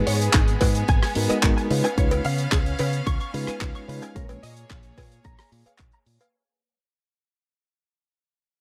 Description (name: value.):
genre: nu-disco, nu disco.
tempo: 110 BPM.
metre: 4/4.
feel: straight.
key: unclear.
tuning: A4 = 440 Hz.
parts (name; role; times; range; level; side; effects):
reed electric piano; accompaniment; 0.0-4.4 s; G#3 to C#5; -30 LUFS; equal; fast tremolo, slapback echo.
clear studio string section; sustained chords; 0.0-6.3 s; G#3 to E#5; -34 LUFS; equal; sidechain pumping.
direct-recorded clean electric guitar; riff; 0.1-6.3 s; D#4 to C#6; -34 LUFS; equal; ensemble chorus, low-pass filter, slapback echo.
fingered electric bass; bass; 0.1-6.2 s; G#1 to C#3; -28 LUFS; equal; sidechain pumping.
damped 70s drum kit; drums; 0.1-6.3 s; handclaps, hi-hat, rim click; -30 LUFS; equal; small room ambience.
electronic kick drum; drums; 0.3-5.9 s; none; -25 LUFS; equal; small room ambience.
cowbell; percussion; 0.6-6.3 s; none; -32 LUFS; equal; none.
room: small room reverb.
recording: none.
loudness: -22 LUFS.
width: mono.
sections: 0.0-6.3 A section.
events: fade-out 0.0-6.3; filter sweep on clean electric guitar 0.0-6.3.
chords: 0.0 G#m7; 1.7 C#7; 4.2 A#m7.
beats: 0.34 0.89 1.43 | 1.98 2.52 3.07 3.61 | 4.16 4.70 5.25 5.79.